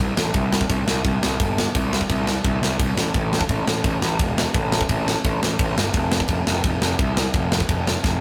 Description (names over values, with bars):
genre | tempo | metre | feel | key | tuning
punk rock | 171 BPM | 4/4 | straight | C major | A4 = 441 Hz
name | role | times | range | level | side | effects
fuzz picked electric bass | bass | 0.0-8.2 s | E1 to C2 | -24 LUFS | equal | overdrive
tight metal drum kit | drums | 0.2-8.1 s | crash cymbal, kick drum, snare drum | -24 LUFS | equal | none
room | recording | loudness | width
light reverb | rough rehearsal-room recording | -21 LUFS | mono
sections
0.0-8.2 A section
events
drum fill 8.0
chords
none